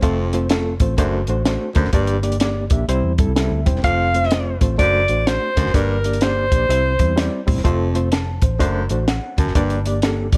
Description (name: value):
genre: uptempo 1960s-style soul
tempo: 126 BPM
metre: 4/4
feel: swing 64% on 8ths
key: F major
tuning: A4 = 440 Hz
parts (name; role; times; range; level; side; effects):
- reed electric piano; accompaniment; 0.0-10.4 s; G3 to A5; -26 LUFS; equal; overdrive, fast tremolo
- warm baritone saxophone; riff; 0.0-9.8 s; F2 to G2; -29 LUFS; equal; none
- vintage muted fingered electric bass; bass; 0.0-10.4 s; E1 to A2; -24 LUFS; equal; none
- compact cocktail drum kit; drums; 0.0-10.4 s; hi-hat, kick drum, snare drum; -22 LUFS; equal; none
- warm alto saxophone; melody; 3.8-7.5 s; Bb4 to F5; -22 LUFS; equal; none
room: light reverb, studio ambience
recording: none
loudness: -19 LUFS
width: mono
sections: 0.0-10.4 A section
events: reed electric piano fill 3.1-3.8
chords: 0.0 F; 1.0 D7/F#; 1.9 Gm; 2.9 C; 3.8 F; 4.8 D7/F#; 5.7 Gm; 6.7 C; 7.6 F; 8.6 D7/F#; 9.6 Gm